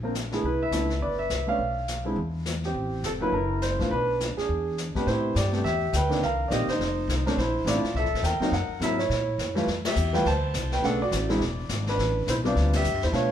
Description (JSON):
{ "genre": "jazz piano trio", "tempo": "208 BPM", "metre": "4/4", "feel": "swing 60% on 8ths", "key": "A minor", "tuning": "A4 = 436 Hz", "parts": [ { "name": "warm concert grand piano", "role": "melody", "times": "0.0-13.3 s", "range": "C3 to A5", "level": "-26 LUFS", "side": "right 1 dB", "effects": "none" }, { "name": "upright bass", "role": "bass", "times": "0.0-13.3 s", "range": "E1 to B2", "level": "-28 LUFS", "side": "equal", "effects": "none" }, { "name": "jazz brush drum kit", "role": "drums", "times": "0.1-13.3 s", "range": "brushed snare drum, hi-hat, kick drum, ride cymbal, snare drum", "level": "-33 LUFS", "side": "left 3 dB", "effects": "none" } ], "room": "moderate large studio reverb, RT60 1.2 s", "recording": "band playing live in one room", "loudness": "-24 LUFS", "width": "side -10 dB against mid", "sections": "0.0-5.1 A section; 5.1-13.3 B section", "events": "band accent 9.8, 12.7", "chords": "0.4 Cmaj13; 1.6 Bdim; 2.2 N.C.; 2.8 Am7; 3.3 F#7#9; 3.9 Bm; 4.5 E7; 5.1 Am9; 6.2 Cm7; 6.8 F7(no3); 7.4 Bbmaj9#11; 8.5 F#7; 9.7 Fmaj9; 10.8 Bm9; 11.4 E7; 12.0 Am11" }